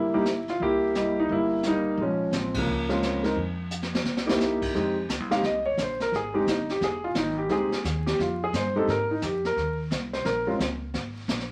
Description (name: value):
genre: jazz piano trio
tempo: 174 BPM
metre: 4/4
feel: swing 63% on 8ths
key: F minor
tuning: A4 = 440 Hz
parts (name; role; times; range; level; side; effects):
- warm concert grand piano; melody; 0.0-10.6 s; Db3 to F5; -27 LUFS; equal; none
- upright bass; bass; 0.0-11.5 s; F1 to Ab2; -37 LUFS; equal; none
- jazz brush drum kit; drums; 0.3-11.5 s; brushed snare drum, crash cymbal, hi-hat, kick drum, ride cymbal, snare drum; -34 LUFS; equal; none
room: moderate studio reverb, RT60 0.6 s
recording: vinyl crackle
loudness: -27 LUFS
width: mono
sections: 0.0-4.7 A section; 4.7-11.5 B section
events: band accent 2.5; drum fill 3.7-4.4; grand piano solo 4.7-11.5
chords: 0.0 C7#9; 2.0 Bbm7; 3.4 N.C.; 4.0 C7#9; 4.7 Fm7; 10.3 Bbm7